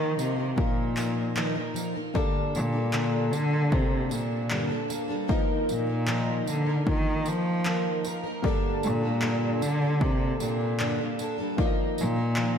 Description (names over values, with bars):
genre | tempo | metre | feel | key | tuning
acoustic pop | 76 BPM | 4/4 | straight | G minor | A4 = 440 Hz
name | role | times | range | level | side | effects
rich cello | melody | 0.0-12.6 s | Bb2 to F3 | -27 LUFS | equal | digital delay
felt-muted upright piano | accompaniment | 0.0-12.6 s | Bb3 to F5 | -36 LUFS | left 6 dB | slapback echo
picked plugged-in steel-string acoustic guitar | accompaniment | 0.0-12.6 s | G2 to Bb4 | -30 LUFS | equal | double-tracked left and right, slapback echo
80s electronic pad drums | drums | 0.2-12.5 s | handclaps, kick drum, tambourine | -30 LUFS | equal | overdrive
room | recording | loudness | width
moderate scoring stage reverb, RT60 2.2 s | big arena sound | -24 LUFS | side -7 dB against mid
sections
0.0-12.6 A section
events
none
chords
0.0 Ebsus2; 2.2 Gmadd9; 5.3 Ebsus2; 8.4 Gmadd9; 11.6 Ebsus2